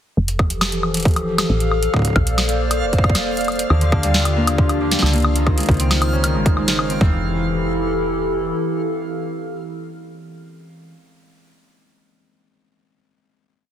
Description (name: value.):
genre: IDM.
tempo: 136 BPM.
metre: 4/4.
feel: straight.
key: F major.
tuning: A4 = 440 Hz.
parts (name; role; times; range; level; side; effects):
warbly tape-like pad; sustained chords; 0.5-10.2 s; Db3 to D5; -22 LUFS; equal; chorus, built-in reverb.
woody FM bass; bass; 0.2-8.5 s; F1 to Eb2; -21 LUFS; equal; none.
backwards swelling texture; texture; 1.6-7.2 s; F5; -31 LUFS; right 2 dB; built-in reverb.
booming analog drum machine; drums; 0.3-7.0 s; hi-hat, snare drum, woodblock; -22 LUFS; left 1 dB; none.
electronic kick drum; drums; 0.4-7.1 s; none; -17 LUFS; equal; overdrive.
Celtic harp; arpeggios; 3.7-10.9 s; D3 to Db4; -25 LUFS; left 2 dB; tape echo.
room: light reverb, digital ambience.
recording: heavily compressed radio sound.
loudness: -16 LUFS.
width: side -10 dB against mid.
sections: 0.2-7.2 groove; 7.2-10.8 final hit.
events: none.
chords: 0.2 Fmaj9; 1.9 Bbmaj9; 3.7 Ebmaj9; 5.2 Dbmaj9; 7.0 Fmaj9.